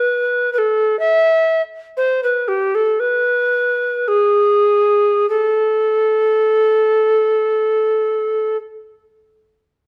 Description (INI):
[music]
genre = classical, baroque-style fantasia for unaccompanied recorder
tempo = 47-66 BPM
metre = 4/4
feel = rubato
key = A minor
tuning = A4 = 436 Hz
[part]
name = mellow tenor recorder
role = solo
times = 0.0-8.6 s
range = G4 to E5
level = -16 LUFS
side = equal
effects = none
[sound]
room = moderate large studio reverb, RT60 1.3 s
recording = none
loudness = -16 LUFS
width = mono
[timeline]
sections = 0.0-5.3 A section; 5.3-9.9 B section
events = slowing down 0.0-5.3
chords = none